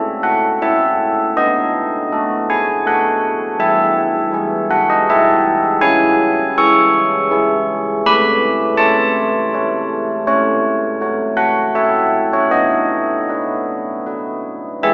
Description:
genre	classical, tune for church bells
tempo	80 BPM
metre	3/4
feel	straight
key	unclear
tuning	A4 = 440 Hz
part	carillon bells	solo	0.0-14.9 s	E3 to C#6	-13 LUFS	equal	none
room	wet cathedral reverb, RT60 4.3 s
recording	small speaker sound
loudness	-13 LUFS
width	side -37 dB against mid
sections	0.0-14.8 A section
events	none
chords	0.0 A; 1.4 B7; 3.6 E; 5.8 C#m; 8.1 A; 10.3 F#m/A; 12.5 B

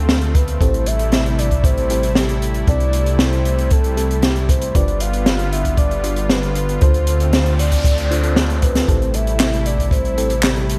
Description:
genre	synthwave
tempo	116 BPM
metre	4/4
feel	straight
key	A minor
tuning	A4 = 439 Hz
part	soft octave-layered synth lead	melody	0.0-10.8 s	G4 to F5	-26 LUFS	equal	chorus, tremolo, vintage 12-bit sampler grit, digital delay
part	warm analog pad	sustained chords	0.0-10.8 s	C3 to F4	-26 LUFS	equal	chorus, sidechain pumping
part	tight sequencer bass	bass	0.0-10.8 s	G1 to D2	-22 LUFS	equal	sidechain pumping
part	open jazz drum kit	drums	0.1-10.8 s	handclaps, hi-hat, snare drum	-23 LUFS	equal	gated reverb
part	kick drum	drums	0.3-10.0 s	none	-19 LUFS	equal	none
part	mellow FM electric piano	stabs	0.6-10.3 s	C4 to C5	-31 LUFS	equal	chorus, phaser
part	noise sweep	sound effects	7.3-8.9 s	none	-32 LUFS	equal	none
room	light reverb, small room reverb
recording	bright 1980s-style digital production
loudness	-17 LUFS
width	mono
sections	0.0-10.8 A section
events	noise sweep 7.3-8.9; drum fill 8.4-8.9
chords	0.0 Dm7; 0.6 Am7; 2.7 C6; 4.7 G7; 6.8 Dm7; 8.9 Am7

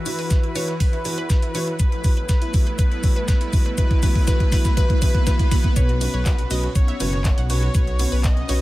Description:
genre	progressive house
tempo	121 BPM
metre	4/4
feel	straight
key	unclear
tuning	A4 = 440 Hz
part	wide unison lead	melody	0.0-8.6 s	B4 to D#5	-30 LUFS	left 1 dB	digital delay
part	warm analog pad	sustained chords	0.0-8.6 s	E3 to B4	-32 LUFS	left 1 dB	chorus, sidechain pumping
part	analog pluck	arpeggios	0.0-8.6 s	B3 to F#5	-33 LUFS	equal	chorus, sidechain pumping, digital delay
part	dark detuned saw bass	bass	0.0-8.6 s	E1 to A2	-25 LUFS	equal	tube saturation, sidechain pumping, high-pass filter
part	riser	sound effects	1.8-5.8 s	none	-35 LUFS	right 2 dB	none
part	dark baby grand piano	stabs	0.1-8.6 s	B2 to B4	-30 LUFS	right 2 dB	sidechain pumping
part	breakbeat sampler-style drum kit	drums	0.1-8.6 s	hi-hat, shaker, snare drum	-35 LUFS	left 2 dB	high-pass filter on perc, high-pass filter on snare, high-pass filter on hats
part	deep house drum kit	drums	0.1-8.6 s	handclaps, hi-hat, ride cymbal	-32 LUFS	right 1 dB	sidechain pumping on hats, high-pass filter on hats, sidechain pumping on cymbals, high-pass filter on cymbals, high-pass filter on snare, high-pass filter on room
part	electronic kick drum	drums	0.3-8.3 s	none	-18 LUFS	equal	none
room	little or no reverb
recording	none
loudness	-17 LUFS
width	side -17 dB against mid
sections	0.0-5.8 A section; 5.8-8.6 B section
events	build-up 0.0-5.8; drum fill 0.0-5.8; filter sweep on analog synth lead 0.0-5.8; drop 5.8-8.6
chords	0.0 Esus2; 1.8 Asus2; 5.8 Bsus2

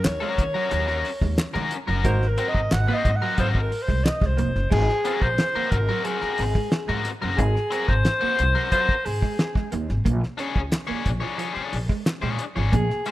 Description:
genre	funk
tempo	90 BPM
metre	4/4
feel	straight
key	unclear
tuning	A4 = 440 Hz
part	breathy alto saxophone	melody	0.0-13.1 s	Ab4 to Gb5	-25 LUFS	left 1 dB	tape echo
part	upright bass	bass	0.0-12.9 s	F1 to Eb3	-24 LUFS	equal	none
part	cloth-damped thuddy drum kit	drums	0.0-13.1 s	crash cymbal, hi-hat, kick drum, snare drum	-25 LUFS	equal	none
part	group handclap	percussion	0.1-4.2, 10.7-12.2 s	none	-36 LUFS	left 1 dB	none
part	biting overdriven guitar	accompaniment	0.2-13.1 s	C4 to C#5	-28 LUFS	left 4 dB	none
part	electric guitar at the edge of break-up	riff	0.2-13.1 s	F3 to C#4	-33 LUFS	right 8 dB	spring reverb
part	mellow horn section	second line	2.0-2.3 s	Bb3 to Bb4	-30 LUFS	right 2 dB	none
room	light reverb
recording	rough home demo mix, lossy compression artefacts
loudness	-21 LUFS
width	side -16 dB against mid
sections	0.0-4.7 A section; 4.7-13.1 B section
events	alto saxophone solo 0.0-4.7; band accent 2.0-4.7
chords	0.0 Ebm7; 2.0 Ab9; 10.1 Bb7#9

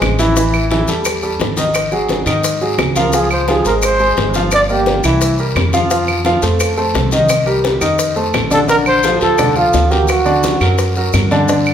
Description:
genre	Afro-Cuban jazz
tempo	173 BPM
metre	4/4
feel	straight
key	unclear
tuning	A4 = 439 Hz
part	warm grand piano	accompaniment	0.0-11.7 s	D3 to F5	-16 LUFS	equal	none
part	upright bass	bass	0.0-11.7 s	G1 to Ab2	-19 LUFS	equal	none
part	bongos	percussion	0.0-11.7 s	none	-24 LUFS	left 4 dB	none
part	claves	percussion	0.0-11.7 s	none	-24 LUFS	right 3 dB	none
part	congas	percussion	0.0-11.7 s	none	-24 LUFS	equal	none
part	guiro	percussion	0.0-11.7 s	none	-27 LUFS	left 4 dB	none
part	maracas	percussion	0.0-11.7 s	none	-26 LUFS	left 4 dB	none
part	breathy trumpet	melody	3.0-5.0, 8.5-10.8 s	F4 to D5	-15 LUFS	right 1 dB	none
room	moderate large studio reverb, RT60 1.3 s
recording	band playing live in one room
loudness	-12 LUFS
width	side -9 dB against mid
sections	0.0-8.7 A section; 8.7-11.7 B section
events	none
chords	0.4 A5; 1.8 Ab5; 3.1 Dbmaj7; 4.5 Gm7; 5.2 C7; 5.9 F; 7.3 Cm7; 8.0 F7; 8.7 Bbmaj9; 10.1 Daug

